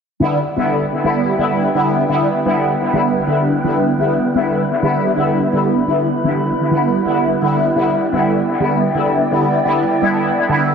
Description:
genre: techno.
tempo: 127 BPM.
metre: 4/4.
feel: swing 56% on 16ths.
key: E minor.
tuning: A4 = 440 Hz.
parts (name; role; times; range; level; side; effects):
warbly tape-like pad; sustained chords; 0.5-10.7 s; E4 to B5; -23 LUFS; right 2 dB; chorus, built-in reverb.
resonant sweep polysynth; stabs; 0.2-10.7 s; D3 to E4; -15 LUFS; equal; chorus, phaser, dub echo.
wind-like tuned noise texture; texture; 0.9-10.7 s; B3 to D5; -27 LUFS; equal; built-in reverb.
room: wet echo chamber reverb, RT60 2.4 s.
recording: dense, heavily limited modern master.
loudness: -14 LUFS.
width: side -6 dB against mid.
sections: 0.2-10.7 A section.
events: none.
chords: 0.2 Em7.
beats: | 0.20 0.67 1.14 1.62 | 2.09 2.56 3.03 3.51 | 3.98 4.45 4.92 5.40 | 5.87 6.34 6.81 7.29 | 7.76 8.23 8.70 9.18 | 9.65 10.12 10.59.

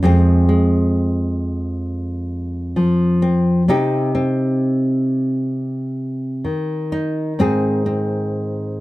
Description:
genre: folk, solo fingerstyle acoustic guitar.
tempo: 65 BPM.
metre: 4/4.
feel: rubato.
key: unclear.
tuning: A4 = 442 Hz.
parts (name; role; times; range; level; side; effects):
nylon-string guitar; solo; 0.0-8.8 s; F2 to Ab4; -16 LUFS; equal; none.
room: light reverb.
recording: dark, warm production.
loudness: -17 LUFS.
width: side -18 dB against mid.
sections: 0.0-8.8 A section.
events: none.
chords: 0.0 Fm; 3.7 Cm; 7.4 Ab.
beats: | 0.03 0.93 1.84 2.75 | 3.67 4.59 5.51 6.44 | 7.38 8.31.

